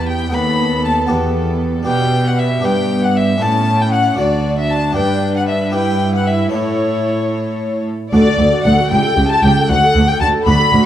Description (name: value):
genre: classical, baroque-style concerto movement with solo episodes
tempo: 77 BPM (dotted quarters)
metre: 6/8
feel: straight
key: D major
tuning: A4 = 440 Hz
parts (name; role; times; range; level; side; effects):
- rich chamber violin section; melody; 0.0-10.8 s; E4 to B5; -24 LUFS; left 3 dB; none
- rich violin; melody; 0.0-10.9 s; C#5 to B5; -20 LUFS; left 2 dB; none
- rich chamber violin section; second line; 0.0-10.8 s; C#5 to B5; -22 LUFS; left 2 dB; none
- harpsichord; accompaniment; 0.0-10.9 s; C#2 to B4; -22 LUFS; left 1 dB; none
- warm chamber viola section; accompaniment; 0.0-10.8 s; B3 to A4; -21 LUFS; right 2 dB; none
- rich studio cello section; bass; 0.0-10.8 s; C#2 to B2; -18 LUFS; right 1 dB; none
- clear chamber double bass section; bass; 8.1-10.8 s; C#2 to D2; -17 LUFS; right 2 dB; none
room: moderate recital hall reverb, RT60 1.7 s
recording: dark, warm production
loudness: -13 LUFS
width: side -11 dB against mid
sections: 0.0-8.1 A section; 8.1-10.9 B section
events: none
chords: 0.3 B7/D#; 1.1 Em; 1.9 G/B; 2.6 G; 3.4 A; 4.2 D; 5.0 G; 5.8 Em/G; 6.5 A; 8.1 D; 8.9 A7/C#; 9.7 D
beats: | 0.34 1.11 | 1.88 2.65 | 3.42 4.19 | 4.97 5.75 | 6.54 7.33 | 8.13 8.91 | 9.69 10.46